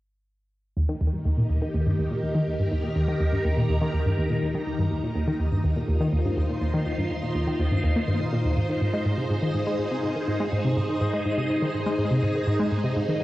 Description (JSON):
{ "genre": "ambient, sequencer-driven space music", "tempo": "123 BPM", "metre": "4/4", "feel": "straight", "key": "unclear", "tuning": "A4 = 440 Hz", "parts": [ { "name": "phased string machine", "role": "sustained chords", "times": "0.8-13.2 s", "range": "Eb3 to C6", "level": "-28 LUFS", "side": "equal", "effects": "ensemble chorus, phaser, cassette tape" }, { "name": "analog pluck", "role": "riff", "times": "0.8-13.2 s", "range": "Eb2 to Bb3", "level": "-24 LUFS", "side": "equal", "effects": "chorus, cassette tape, tape echo" }, { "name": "twinkling granular texture", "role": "texture", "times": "1.5-13.2 s", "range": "Eb5", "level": "-40 LUFS", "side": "right 1 dB", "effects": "built-in reverb, cassette tape" } ], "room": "wet studio reverb, RT60 0.6 s", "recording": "home recording on cassette", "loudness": "-23 LUFS", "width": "side -16 dB against mid", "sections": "0.8-13.2 A section", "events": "fade-in on synth texture 0.8-13.2; filter sweep on synth arpeggio sound 0.8-13.2", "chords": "0.8 Eb; 8.6 Ab" }